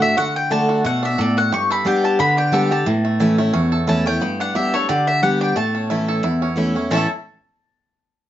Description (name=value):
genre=bluegrass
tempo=178 BPM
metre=4/4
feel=swing 54% on 8ths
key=A mixolydian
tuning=A4 = 440 Hz
part: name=bluegrass banjo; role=melody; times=0.0-7.1 s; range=E3 to A4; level=-25 LUFS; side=right 2 dB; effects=none
part: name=mandolin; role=melody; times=0.0-7.1 s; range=C#5 to C#6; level=-22 LUFS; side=left 2 dB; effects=none
part: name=picked steel-string acoustic guitar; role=accompaniment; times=0.0-7.1 s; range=E2 to G4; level=-18 LUFS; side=equal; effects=none
room=moderate studio reverb, RT60 0.5 s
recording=nothing above 7.6 kHz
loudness=-16 LUFS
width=side -12 dB against mid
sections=0.0-4.2 A section; 4.2-6.9 B section; 6.9-8.3 C section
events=none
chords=0.0 D; 1.5 G; 2.9 A; 4.2 G; 5.6 A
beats=| 0.17 0.51 0.84 1.18 | 1.52 1.85 2.19 2.53 | 2.87 3.20 3.54 3.88 | 4.21 4.55 4.89 5.22 | 5.56 5.90 6.24 6.58 | 6.91